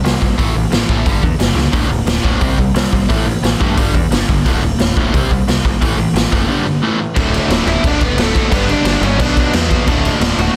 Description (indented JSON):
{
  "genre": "punk rock",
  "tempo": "177 BPM",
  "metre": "4/4",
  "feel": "straight",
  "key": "D major",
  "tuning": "A4 = 440 Hz",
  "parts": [
    { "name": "distorted electric guitar", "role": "riff", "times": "0.0-10.6 s", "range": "D2 to C4", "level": "-23 LUFS", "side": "equal", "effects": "overdrive" },
    { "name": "growling picked electric bass", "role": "bass", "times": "0.0-10.5 s", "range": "D1 to G2", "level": "-22 LUFS", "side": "equal", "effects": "overdrive" },
    { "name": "raw garage drum kit", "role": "drums", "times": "0.1-10.5 s", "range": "crash cymbal, hi-hat, kick drum, snare drum", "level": "-18 LUFS", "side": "equal", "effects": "none" },
    { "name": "crunchy overdriven guitar", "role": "riff", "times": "1.7-10.6 s", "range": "D2 to C4", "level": "-23 LUFS", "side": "equal", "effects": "none" },
    { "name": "distorted electric guitar", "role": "riff", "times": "7.1-10.6 s", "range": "D2 to B4", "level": "-24 LUFS", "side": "equal", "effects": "overdrive" },
    { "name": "biting lead guitar", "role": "melody", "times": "7.7-10.6 s", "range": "A3 to F#5", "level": "-22 LUFS", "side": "equal", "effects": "overdrive, digital delay" }
  ],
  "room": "little or no reverb",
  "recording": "dense, heavily limited modern master",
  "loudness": "-15 LUFS",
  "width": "mono",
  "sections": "0.0-7.2 A section; 7.2-10.6 B section",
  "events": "drum fill 1.6",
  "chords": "0.4 A5; 1.1 G5; 1.7 D5; 2.4 C5; 3.1 A5; 3.8 G5; 4.5 D5; 5.1 C5; 5.8 A5; 6.5 G5; 6.8 A5; 7.2 D; 8.5 G; 9.2 Bm; 9.9 D"
}